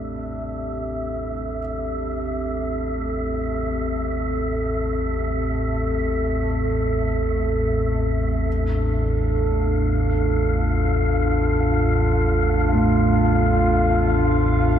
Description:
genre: dark ambient drone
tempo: free time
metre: none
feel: none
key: unclear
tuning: A4 = 440 Hz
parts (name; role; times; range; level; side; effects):
- dark analog pad; sustained chords; 0.0-14.8 s; C4 to F5; -24 LUFS; right 1 dB; wide subtle chorus
- dark grand piano; arpeggios; 0.0-14.8 s; A2 to D4; -29 LUFS; right 2 dB; tape echo
- deep rumbling drone; drone; 0.0-14.8 s; A1 to E2; -22 LUFS; left 1 dB; built-in reverb, wide subtle chorus
- wind-like tuned noise texture; texture; 0.0-14.8 s; E5 to F5; -30 LUFS; left 1 dB; built-in reverb
room: wet cathedral reverb, RT60 6.6 s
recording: none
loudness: -19 LUFS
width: side -9 dB against mid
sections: 0.0-14.8 A section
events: fade-in on synth drone 0.0-14.8; fade-in on analog synth pad 0.0-14.8; fade-in on synth texture 0.0-14.8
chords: 0.0 Am7; 8.5 Dm

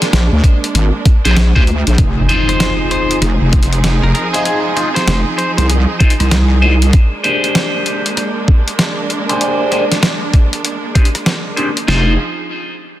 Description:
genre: glitch hop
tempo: 97 BPM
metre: 4/4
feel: swing 64% on 16ths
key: F dorian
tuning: A4 = 440 Hz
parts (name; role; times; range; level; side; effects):
- rich symphonic string section; sustained chords; 0.0-12.2 s; F3 to Ab4; -21 LUFS; right 2 dB; sidechain pumping
- boom bap sampler-style drum kit; drums; 0.0-11.9 s; hi-hat, rim click, snare drum; -18 LUFS; equal; none
- wobble bass; bass; 0.1-6.9, 11.9-12.2 s; F1 to D2; -12 LUFS; equal; chorus
- boom bap sampler-style drum kit; drums; 0.4-12.1 s; kick drum, snare drum; -10 LUFS; equal; none
- electric guitar at the edge of break-up; stabs; 1.2-12.1 s; D4 to C5; -18 LUFS; equal; phaser, sidechain pumping, low-pass filter, digital delay
- impact; sound effects; 2.0-4.5 s; none; -20 LUFS; equal; none
- lightly driven lead guitar; melody; 2.5-5.7 s; Ab4 to C5; -21 LUFS; equal; vintage 12-bit sampler grit, digital delay
room: light reverb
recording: dense, heavily limited modern master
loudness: -11 LUFS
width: side -13 dB against mid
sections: 0.0-2.0 A section; 2.0-11.9 B section; 11.9-13.0 C section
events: drop 0.0-2.0; impact 2.0-4.5; filter sweep on clean electric guitar 2.0-11.9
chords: 0.0 Bb7; 2.0 Fm7; 6.9 Bb13; 11.9 Fm7

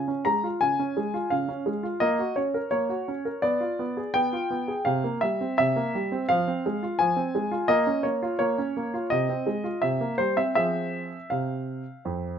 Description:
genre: classical-period piano sonatina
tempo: 85 BPM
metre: 4/4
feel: rubato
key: F minor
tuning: A4 = 440 Hz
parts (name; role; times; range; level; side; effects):
- warm baby grand piano; solo; 0.0-12.4 s; F2 to Bb5; -24 LUFS; equal; none
room: light reverb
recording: nothing above 7.8 kHz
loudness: -24 LUFS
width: side -8 dB against mid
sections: 0.0-12.4 A section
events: none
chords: 0.0 Db; 2.0 Gb/Bb; 3.4 Bdim7; 4.9 C7; 6.3 Fm; 7.7 Bbm; 9.1 Fm/C; 9.8 C7; 10.6 Fm

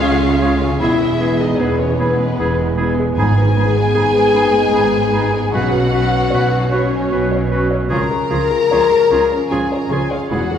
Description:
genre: cinematic, emotional film score for orchestra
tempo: 76 BPM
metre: 3/4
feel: rubato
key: unclear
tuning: A4 = 441 Hz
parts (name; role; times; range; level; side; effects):
- dark studio violin section; melody; 0.0-10.6 s; B4 to Bb5; -23 LUFS; left 1 dB; none
- clear clarinet; second line; 0.0-10.5 s; Db4 to Gb4; -28 LUFS; left 2 dB; none
- mellow large flute ensemble; second line; 0.0-10.4 s; B5 to Db6; -32 LUFS; equal; none
- rich studio violin section; second line; 0.0-10.6 s; B3 to Bb4; -25 LUFS; left 3 dB; none
- warm oboe; second line; 0.0-10.5 s; Ab4 to Cb5; -27 LUFS; right 3 dB; none
- felt-muted upright piano; accompaniment; 0.0-10.6 s; Cb2 to Db5; -21 LUFS; left 1 dB; none
- warm symphonic viola section; accompaniment; 0.0-10.4 s; F3 to Db4; -23 LUFS; right 2 dB; none
- dark French horn section; sustained chords; 0.0-10.6 s; B3 to Bb4; -19 LUFS; left 5 dB; none
- rich studio double bass section; bass; 0.0-10.4 s; E1 to Db2; -22 LUFS; right 2 dB; none
- rich symphonic cello section; bass; 0.0-10.4 s; E2 to Db3; -23 LUFS; right 2 dB; none
- timpani; percussion; 3.2-4.3 s; Ab2; -22 LUFS; equal; none
room: wet scoring stage reverb, RT60 1.6 s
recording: heard from further back in the room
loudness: -13 LUFS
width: side -8 dB against mid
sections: 0.0-10.6 A section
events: none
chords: 0.0 Db; 0.8 E; 3.2 Abm; 5.5 Cbsus2; 7.9 Db

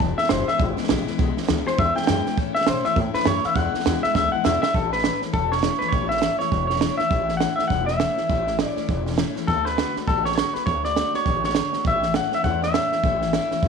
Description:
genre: rockabilly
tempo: 203 BPM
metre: 4/4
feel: swing 60% on 8ths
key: A major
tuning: A4 = 444 Hz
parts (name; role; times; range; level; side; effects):
- picked steel-string acoustic guitar; accompaniment; 0.0-13.7 s; E2 to F#4; -28 LUFS; left 14 dB; none
- upright bass; bass; 0.0-13.7 s; E1 to B2; -28 LUFS; equal; none
- compact cocktail drum kit; drums; 0.0-13.7 s; hi-hat, kick drum, snare drum; -25 LUFS; right 6 dB; none
- electric guitar through a small old amp; melody; 0.2-13.7 s; A4 to G5; -23 LUFS; left 1 dB; tape echo
room: moderate echo chamber reverb, RT60 1.9 s, small room reverb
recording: 1960s-style stereo with parts hard left and right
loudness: -20 LUFS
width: side -6 dB against mid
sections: 0.0-4.7 A section; 4.7-13.7 B section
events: clean electric guitar solo 0.0-4.7; drum fill 4.2-4.7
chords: 0.0 E; 2.4 A; 3.6 E; 4.7 A; 9.5 D; 11.9 A

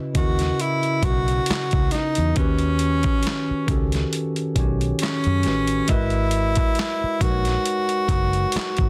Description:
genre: R&B, neo-soul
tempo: 68 BPM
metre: 4/4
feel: swing 54% on 16ths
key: unclear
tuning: A4 = 440 Hz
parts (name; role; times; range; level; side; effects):
- tine electric piano; accompaniment; 0.0-8.9 s; C#3 to D#5; -29 LUFS; equal; plate reverb
- boom bap sampler-style drum kit; drums; 0.1-8.9 s; handclaps, hi-hat, kick drum, snare drum; -26 LUFS; equal; none
- breathy tenor saxophone; melody; 0.2-8.9 s; C#4 to F#4; -26 LUFS; equal; plate reverb
- vintage muted fingered electric bass; bass; 0.2-8.9 s; F#1 to F#2; -26 LUFS; equal; none
room: light reverb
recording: dense, heavily limited modern master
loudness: -22 LUFS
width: mono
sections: 0.0-8.9 A section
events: none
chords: 0.0 C#m11; 2.4 D#7alt; 5.9 G#m7

